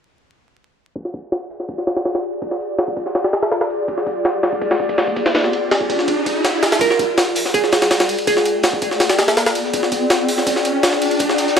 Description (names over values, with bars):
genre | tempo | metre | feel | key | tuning
drum and bass, jungle | 164 BPM | 4/4 | straight | F dorian | A4 = 440 Hz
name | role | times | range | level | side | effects
ethereal airy pad | sustained chords | 1.6-11.6 s | F4 to G5 | -22 LUFS | left 2 dB | ensemble chorus, built-in reverb, vintage 12-bit sampler grit
jungle sampler-style drum kit | drums | 1.0-11.6 s | hi-hat, kick drum, ride cymbal, snare drum | -18 LUFS | equal | overdrive, high-pass filter on kick, high-pass filter on cymbals, high-pass filter on snare, high-pass filter on hats
riser | sound effects | 4.6-11.6 s | none | -24 LUFS | right 1 dB | none
glassy wavetable pluck | melody | 6.8-8.6 s | Ab4 to Bb4 | -20 LUFS | right 4 dB | chorus, dub echo
crunchy breakbeat drum kit | drums | 6.8-11.6 s | hi-hat, snare drum | -30 LUFS | left 3 dB | none
room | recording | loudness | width
moderate echo chamber reverb, RT60 2.1 s | vinyl crackle, low-pass filter | -16 LUFS | side -7 dB against mid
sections
1.0-6.8 A section; 6.8-11.6 B section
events
filter sweep 1.0-6.8; riser 4.6-6.8, 6.8-11.6; build-up 6.8-11.6; filter sweep on ambient pad 6.8-11.6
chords
1.0 Fm69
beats
| 0.96 1.32 1.69 2.05 | 2.42 2.79 3.15 3.52 | 3.88 4.25 4.61 4.98 | 5.35 5.71 6.08 6.44 | 6.81 7.17 7.54 7.91 | 8.27 8.64 9.01 9.37 | 9.74 10.10 10.47 10.83 | 11.20 11.56